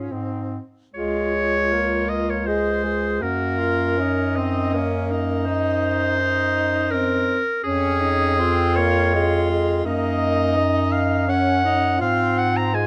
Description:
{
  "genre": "classical, lyrical piece for single-reed quartet",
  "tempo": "81 BPM",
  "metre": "3/4",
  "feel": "uneven beats, rubato",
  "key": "Db major",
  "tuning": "A4 = 440 Hz",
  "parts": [
    { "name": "bright clarinet", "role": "melody", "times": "0.0-12.9 s", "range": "Ab4 to Bb5", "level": "-25 LUFS", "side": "equal", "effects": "none" },
    { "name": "clear alto saxophone", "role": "second line", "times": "0.0-12.9 s", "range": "C4 to Ab4", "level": "-30 LUFS", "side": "equal", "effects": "none" },
    { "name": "mellow tenor saxophone", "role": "accompaniment", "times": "0.0-12.9 s", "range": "Ab3 to Eb4", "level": "-28 LUFS", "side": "equal", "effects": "none" },
    { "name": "mellow bass clarinet", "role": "bass", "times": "0.0-12.9 s", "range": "Db2 to Ab2", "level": "-26 LUFS", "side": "equal", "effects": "none" }
  ],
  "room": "moderate stone room reverb, RT60 1.0 s",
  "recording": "none",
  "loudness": "-21 LUFS",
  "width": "mono",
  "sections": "1.0-12.9 A section",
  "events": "none",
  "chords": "0.1 Ab; 1.0 Db; 3.2 Ebm/Gb; 5.5 Ebm6/Gb; 7.6 Db/F; 9.9 Gb; 12.0 Ab69"
}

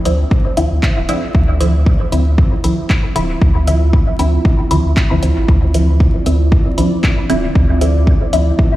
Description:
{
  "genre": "dub techno",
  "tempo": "116 BPM",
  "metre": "4/4",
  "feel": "swing 56% on 16ths",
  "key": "D minor",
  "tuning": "A4 = 438 Hz",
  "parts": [
    { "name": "deep dark ambient pad", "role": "sustained chords", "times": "0.0-8.8 s", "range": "C4 to E5", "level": "-23 LUFS", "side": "right 1 dB", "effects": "chorus, built-in reverb, sidechain pumping" },
    { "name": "filtered dub chord stab", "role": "stabs", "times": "0.1-8.6 s", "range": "D3 to E4", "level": "-19 LUFS", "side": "equal", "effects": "phaser, sidechain pumping, dub echo" },
    { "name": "soft dub sub bass", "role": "bass", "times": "0.1-8.5 s", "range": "D1 to F2", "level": "-14 LUFS", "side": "equal", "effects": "sidechain pumping" },
    { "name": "punchy analog drum machine", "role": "drums", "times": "0.1-8.4 s", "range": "handclaps, hi-hat", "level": "-26 LUFS", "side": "equal", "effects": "dub echo" },
    { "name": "electronic kick drum", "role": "drums", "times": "0.3-8.7 s", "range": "none", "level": "-12 LUFS", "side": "equal", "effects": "none" }
  ],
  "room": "light reverb, digital ambience",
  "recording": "played on a big sound system in a bare room, large studio reverb, vinyl crackle",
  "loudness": "-11 LUFS",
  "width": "side -15 dB against mid",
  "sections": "0.0-8.8 A section",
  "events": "none",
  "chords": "0.0 Dm9"
}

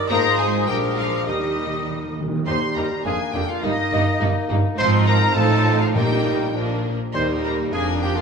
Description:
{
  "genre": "quick classical-period movement for symphony orchestra",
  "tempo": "103 BPM",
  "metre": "2/4",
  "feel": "rubato",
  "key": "Eb major",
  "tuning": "A4 = 439 Hz",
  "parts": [
    { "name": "clear clarinet", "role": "second line", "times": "0.0-8.2 s", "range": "D4 to Ab4", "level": "-31 LUFS", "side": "left 2 dB", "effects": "none" },
    { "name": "flute section", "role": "second line", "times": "0.0-8.2 s", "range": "Eb5 to Eb6", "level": "-30 LUFS", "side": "equal", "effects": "none" },
    { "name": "mellow bassoon", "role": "accompaniment", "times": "0.0-8.2 s", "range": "Eb3 to Bb3", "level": "-29 LUFS", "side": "right 2 dB", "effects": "none" },
    { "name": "rich studio viola section", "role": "accompaniment", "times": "0.0-8.2 s", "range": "F3 to C5", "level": "-30 LUFS", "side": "right 2 dB", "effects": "none" },
    { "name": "mellow French horn section", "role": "sustained chords", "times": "0.0-8.2 s", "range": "Eb3 to Eb4", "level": "-30 LUFS", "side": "left 6 dB", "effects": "none" },
    { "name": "dark trumpet", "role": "stabs", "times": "0.0-8.2 s", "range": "Eb4 to C5", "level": "-27 LUFS", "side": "right 3 dB", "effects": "none" },
    { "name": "rich studio double bass section", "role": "bass", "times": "0.0-8.2 s", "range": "F1 to Eb2", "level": "-26 LUFS", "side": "right 2 dB", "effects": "none" },
    { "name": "clear studio violin section", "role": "melody", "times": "0.1-8.2 s", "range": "Eb5 to C6", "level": "-27 LUFS", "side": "left 5 dB", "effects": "none" },
    { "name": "rich studio violin section", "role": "second line", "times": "0.1-8.2 s", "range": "D4 to Bb4", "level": "-30 LUFS", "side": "left 4 dB", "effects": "none" },
    { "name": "clear studio cello section", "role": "bass", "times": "0.1-8.2 s", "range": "Eb2 to Bb3", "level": "-27 LUFS", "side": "right 3 dB", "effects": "none" },
    { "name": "timpani", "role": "percussion", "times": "1.3-2.4, 6.0-7.7 s", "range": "Bb2 to Eb3", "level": "-29 LUFS", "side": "left 1 dB", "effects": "none" }
  ],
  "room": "moderate concert hall reverb, RT60 2.3 s",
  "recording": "none",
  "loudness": "-18 LUFS",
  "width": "side -5 dB against mid",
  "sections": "0.0-2.5 A section; 2.5-8.2 B section",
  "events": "timpani fill 1.3-2.5",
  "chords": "0.1 Fm7/Ab; 0.7 Bb7; 1.3 Eb; 3.1 Bb7/F; 3.6 Eb/G; 4.8 Fm7/Ab; 5.4 F7/A; 6.0 Eb/Bb; 6.6 Bb; 7.2 Eb"
}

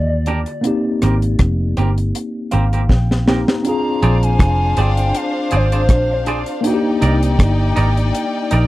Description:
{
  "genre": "lovers rock reggae",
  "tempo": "80 BPM",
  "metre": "4/4",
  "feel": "swing 55% on 16ths",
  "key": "unclear",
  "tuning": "A4 = 442 Hz",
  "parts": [
    { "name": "reedy FM lead", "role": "melody", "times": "0.0-6.3 s", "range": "C5 to Bb5", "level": "-23 LUFS", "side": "equal", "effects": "chorus, tape echo" },
    { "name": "tine electric piano", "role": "accompaniment", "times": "0.0-8.7 s", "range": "D3 to Bb5", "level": "-21 LUFS", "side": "left 1 dB", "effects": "overdrive, fast stereo tremolo" },
    { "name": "vintage muted fingered electric bass", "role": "bass", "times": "0.0-8.7 s", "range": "F1 to Eb2", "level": "-16 LUFS", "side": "equal", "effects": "none" },
    { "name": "twangy electric guitar", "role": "stabs", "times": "0.3-8.6 s", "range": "C4 to D5", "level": "-22 LUFS", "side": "right 4 dB", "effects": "none" },
    { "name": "deep reggae drum kit", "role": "drums", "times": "0.3-8.7 s", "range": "hi-hat, kick drum, rim click, snare drum", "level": "-16 LUFS", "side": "equal", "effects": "none" },
    { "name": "warm studio violin section", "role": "second line", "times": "3.7-8.7 s", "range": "D4 to G5", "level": "-23 LUFS", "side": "left 2 dB", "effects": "none" }
  ],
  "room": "little or no reverb",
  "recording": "dry, close 1970s-style studio recording",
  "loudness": "-14 LUFS",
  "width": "side -17 dB against mid",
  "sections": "0.0-3.6 A section; 3.6-8.7 B section",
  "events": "tine electric piano fill 2.1-3.6; drum fill 2.9-3.6",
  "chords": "0.0 Ebmaj7; 0.6 Abmaj9; 3.6 Bb9; 6.6 Cm9"
}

